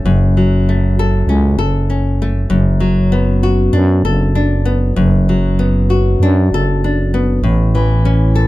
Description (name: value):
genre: acoustic folk duo or small band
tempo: 98 BPM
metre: 4/4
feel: straight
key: B minor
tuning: A4 = 441 Hz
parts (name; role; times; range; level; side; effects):
- nylon-string guitar; accompaniment; 0.0-8.5 s; F#2 to A4; -15 LUFS; left 2 dB; none
- growling FM bass; bass; 0.0-8.5 s; F#1 to F#2; -14 LUFS; right 1 dB; none
room: little or no reverb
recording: close, detailed microphones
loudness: -11 LUFS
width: side -17 dB against mid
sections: 0.0-8.5 A section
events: none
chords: 0.0 F#m; 2.5 Bm/F#; 7.4 A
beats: | 0.05 0.66 1.28 1.89 | 2.51 3.12 3.74 4.36 | 4.97 5.59 6.20 6.82 | 7.43 8.05